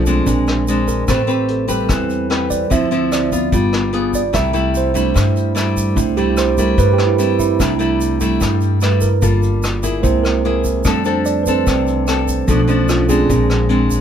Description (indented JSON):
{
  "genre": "bossa nova",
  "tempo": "148 BPM",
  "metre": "4/4",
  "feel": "straight",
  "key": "C major",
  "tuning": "A4 = 440 Hz",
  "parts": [
    { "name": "nylon-string guitar", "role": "accompaniment", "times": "0.0-14.0 s", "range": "G2 to B4", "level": "-19 LUFS", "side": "left 2 dB", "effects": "none" },
    { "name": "tine electric piano", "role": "accompaniment", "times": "0.0-14.0 s", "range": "F3 to E5", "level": "-18 LUFS", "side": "right 6 dB", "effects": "none" },
    { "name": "upright bass", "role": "bass", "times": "0.0-14.0 s", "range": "G1 to G2", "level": "-19 LUFS", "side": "left 1 dB", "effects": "none" },
    { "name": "vintage brush drum kit", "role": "drums", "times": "0.1-14.0 s", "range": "hi-hat, kick drum, rim click", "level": "-22 LUFS", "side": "left 1 dB", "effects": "none" },
    { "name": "egg shaker", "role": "percussion", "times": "0.1-14.0 s", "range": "none", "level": "-31 LUFS", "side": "right 5 dB", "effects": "none" }
  ],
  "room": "light reverb",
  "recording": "none",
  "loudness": "-14 LUFS",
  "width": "side -8 dB against mid",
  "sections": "0.0-7.6 A section; 7.6-14.0 A section",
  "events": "tine electric piano solo 0.0-14.0",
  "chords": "0.3 Bb9; 1.1 Am9; 2.7 Dm9; 3.5 G7b9; 4.3 C6; 9.2 Gm9; 10.0 Caug7; 10.9 F6; 12.5 Bm7b5; 13.3 Bb9"
}